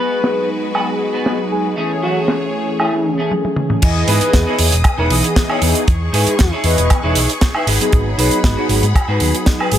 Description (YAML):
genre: nu-disco, nu disco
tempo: 117 BPM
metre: 4/4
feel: straight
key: E major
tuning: A4 = 440 Hz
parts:
  - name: soft octave-layered synth lead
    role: melody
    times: 0.0-9.8 s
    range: E4 to B4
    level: -23 LUFS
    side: equal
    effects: chorus, analog delay
  - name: mellow synth brass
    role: accompaniment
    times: 0.0-9.8 s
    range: E3 to D#5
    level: -20 LUFS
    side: equal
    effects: chorus, sidechain pumping
  - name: bright studio string section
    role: sustained chords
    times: 0.0-9.8 s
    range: G#3 to D#6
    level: -27 LUFS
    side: left 1 dB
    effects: sidechain pumping
  - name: clean electric guitar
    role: riff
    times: 0.0-9.8 s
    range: A3 to C#5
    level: -23 LUFS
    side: equal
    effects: analog chorus
  - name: tight funk drum kit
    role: drums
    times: 0.1-9.8 s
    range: crash cymbal, hi-hat, snare drum, toms, woodblock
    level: -20 LUFS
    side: right 1 dB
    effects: low-pass filter on cymbals, small room ambience, low-pass filter on hats, low-pass filter on toms, low-pass filter on snare, low-pass filter on perc, low-pass filter on room
  - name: hollow-body short-scale picked electric bass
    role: bass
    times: 3.8-9.8 s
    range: E1 to G#2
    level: -17 LUFS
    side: equal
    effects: none
  - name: kick drum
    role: drums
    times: 3.8-9.6 s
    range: none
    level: -14 LUFS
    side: equal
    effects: small room ambience
room: light reverb, small room ambience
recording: none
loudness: -13 LUFS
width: side -10 dB against mid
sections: 0.0-3.8 A section; 3.8-9.8 B section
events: drum fill 3.3-3.8; drop 3.8-9.8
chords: 0.0 G#m7; 1.8 Amaj7; 3.8 Emaj7; 7.7 G#m7